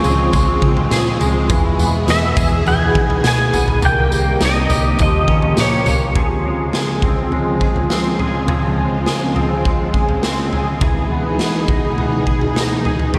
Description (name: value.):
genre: dream pop.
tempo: 103 BPM.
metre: 4/4.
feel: straight.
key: Db lydian.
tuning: A4 = 440 Hz.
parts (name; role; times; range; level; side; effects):
string machine, violas; sustained chords; 0.0-13.2 s; B2 to G#4; -22 LUFS; equal; ensemble chorus.
twangy electric guitar; arpeggios; 0.0-13.2 s; Eb3 to Ab4; -25 LUFS; equal; ensemble chorus, diffuse ambient delay.
vintage muted fingered electric bass; bass; 0.0-6.1 s; Bb1 to E3; -21 LUFS; equal; none.
raw garage drum kit; drums; 0.0-13.2 s; kick drum, snare drum, tambourine, toms; -21 LUFS; equal; none.
glockenspiel with hard plastic mallets; texture; 0.0-0.7, 5.3-6.2 s; Bb5 to Db6; -31 LUFS; equal; diffuse ambient delay.
pedal steel guitar; melody; 2.1-6.0 s; Db5 to G#5; -22 LUFS; equal; ensemble chorus, diffuse ambient delay.
room: wet lush hall reverb, RT60 2.6 s.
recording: dreamy mix soaked in reverb, lossy compression artefacts.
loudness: -16 LUFS.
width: mono.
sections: 0.0-6.2 A section; 6.2-13.2 B section.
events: none.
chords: 0.0 Dbmaj7; 1.5 Emaj7; 3.8 Cm7; 5.0 Eb9; 6.2 Dbmaj7; 10.8 Emaj7.